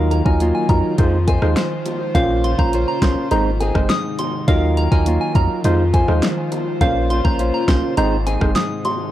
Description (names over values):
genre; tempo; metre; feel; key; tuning
dancehall; 103 BPM; 4/4; straight; Bb minor; A4 = 439 Hz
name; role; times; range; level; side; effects
percussive organ stab; accompaniment; 0.0-8.6 s; Gb3 to C5; -21 LUFS; right 2 dB; chorus
airy breathy pad; sustained chords; 0.0-9.1 s; C3 to C5; -27 LUFS; left 1 dB; chorus, sidechain pumping
nylon-string guitar; arpeggios; 0.0-9.1 s; Ab2 to C5; -26 LUFS; left 3 dB; analog delay
punchy sub bass; bass; 0.0-8.5 s; Gb1 to F2; -19 LUFS; equal; none
soft synth bell; melody; 0.1-9.0 s; F5 to Eb6; -24 LUFS; equal; chorus, phaser
pop drum kit; drums; 0.1-9.0 s; hi-hat, kick drum, rim click, snare drum; -19 LUFS; equal; overdrive
bongos; percussion; 0.1-9.0 s; none; -32 LUFS; right 2 dB; none
room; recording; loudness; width
digital ambience; dry, gritty hardware recording; -15 LUFS; side -13 dB against mid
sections
0.0-9.1 A section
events
none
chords
0.0 Ebmadd9; 1.0 Fm7; 2.1 Bbmadd9; 3.3 Ab; 4.5 Ebmadd9; 5.6 Fm7; 6.8 Bbmadd9; 8.0 Ab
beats
0.40 0.98 1.57 | 2.15 2.73 3.31 3.90 | 4.48 5.06 5.64 6.23 | 6.81 7.39 7.97 8.56